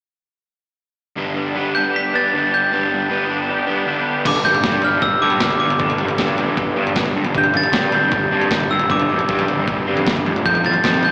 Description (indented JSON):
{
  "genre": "indie rock",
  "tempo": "155 BPM",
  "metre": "4/4",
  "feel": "straight",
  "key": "G mixolydian",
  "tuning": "A4 = 438 Hz",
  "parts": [
    { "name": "electric guitar at the edge of break-up", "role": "riff", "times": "1.2-11.1 s", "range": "F2 to G4", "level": "-27 LUFS", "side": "equal", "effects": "ensemble chorus, slapback echo, digital delay" },
    { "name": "overdriven semi-hollow guitar", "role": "riff", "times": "1.2-11.1 s", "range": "G2 to A4", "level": "-25 LUFS", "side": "equal", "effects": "none" },
    { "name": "glockenspiel with brass mallets", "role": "melody", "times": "1.7-11.1 s", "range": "D6 to B6", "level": "-22 LUFS", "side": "equal", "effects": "digital delay" },
    { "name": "fuzz picked electric bass", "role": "bass", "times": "4.3-11.1 s", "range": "F1 to G2", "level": "-24 LUFS", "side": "equal", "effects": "overdrive" },
    { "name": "crisp 8-bit digital drum machine", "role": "drums", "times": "4.3-11.1 s", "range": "crash cymbal, kick drum, snare drum, toms", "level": "-25 LUFS", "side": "equal", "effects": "none" }
  ],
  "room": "light reverb, digital ambience",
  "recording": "live gig heard through the venue's PA, recital hall reverb, small speaker sound",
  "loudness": "-18 LUFS",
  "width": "mono",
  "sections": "1.2-4.3 A section; 4.3-11.1 B section",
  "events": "none",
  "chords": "1.2 G; 7.4 Csus2/G; 10.4 F"
}